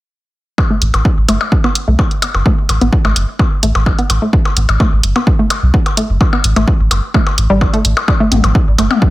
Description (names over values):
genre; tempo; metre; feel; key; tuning
minimal techno; 128 BPM; 4/4; straight; A minor; A4 = 440 Hz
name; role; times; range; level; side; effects
electronic kick drum; drums; 0.6-9.1 s; none; -13 LUFS; equal; overdrive
electronic percussion blips and toms; percussion; 0.6-9.0 s; none; -19 LUFS; left 4 dB; none
hollow square pluck; riff; 0.7-8.8 s; G3 to B3; -18 LUFS; equal; chorus, sidechain pumping, dub echo
rubbery square bass; bass; 0.8-8.9 s; G1 to C2; -13 LUFS; equal; tube saturation, sidechain pumping
electronic hi-hat; drums; 0.8-8.9 s; none; -18 LUFS; right 1 dB; none
room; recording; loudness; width
little or no reverb; none; -10 LUFS; side -17 dB against mid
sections
0.6-9.1 A section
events
filter sweep on synth arpeggio sound 0.6-9.1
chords
none